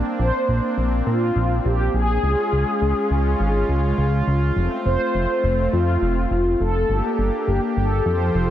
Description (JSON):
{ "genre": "synthwave", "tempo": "103 BPM", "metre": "4/4", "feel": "straight", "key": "unclear", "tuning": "A4 = 440 Hz", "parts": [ { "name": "brassy analog pad", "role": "sustained chords", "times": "0.0-8.5 s", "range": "F3 to C5", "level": "-25 LUFS", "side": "equal", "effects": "chorus" }, { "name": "fat analog bass", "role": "bass", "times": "0.0-8.5 s", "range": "F1 to Bb2", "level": "-20 LUFS", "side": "equal", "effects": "none" }, { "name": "mellow synth brass", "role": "melody", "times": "0.2-8.5 s", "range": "F4 to C5", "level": "-23 LUFS", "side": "left 1 dB", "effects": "chorus, cassette tape, digital delay" } ], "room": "light reverb", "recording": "dense, heavily limited modern master", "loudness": "-18 LUFS", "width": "side -11 dB against mid", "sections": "0.0-8.5 A section", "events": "none", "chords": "0.0 Bbadd9; 2.2 Db; 4.6 F; 6.9 Gm" }